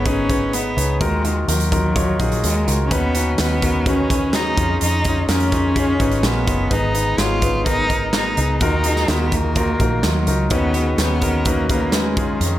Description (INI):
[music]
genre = piano-driven pop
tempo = 126 BPM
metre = 4/4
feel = straight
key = unclear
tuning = A4 = 442 Hz
[part]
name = rich cello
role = melody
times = 0.0-12.6 s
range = Eb3 to F4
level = -22 LUFS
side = equal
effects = none
[part]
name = clear concert grand piano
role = accompaniment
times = 0.0-12.6 s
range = Ab2 to Eb5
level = -22 LUFS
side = left 2 dB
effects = none
[part]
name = vintage muted fingered electric bass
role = bass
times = 0.0-12.6 s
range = Gb1 to F2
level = -22 LUFS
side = equal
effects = none
[part]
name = modern studio drum kit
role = drums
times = 0.1-12.5 s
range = handclaps, hi-hat, kick drum, snare drum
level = -22 LUFS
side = right 1 dB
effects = none
[sound]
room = studio ambience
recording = none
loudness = -16 LUFS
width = side -13 dB against mid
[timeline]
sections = 0.0-12.6 A section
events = none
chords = 0.0 Abm; 1.0 Ebmadd9; 2.9 Badd9/D#; 4.6 Dbadd9/F; 6.7 Abm; 8.6 Ebmadd9; 10.5 Badd9/D#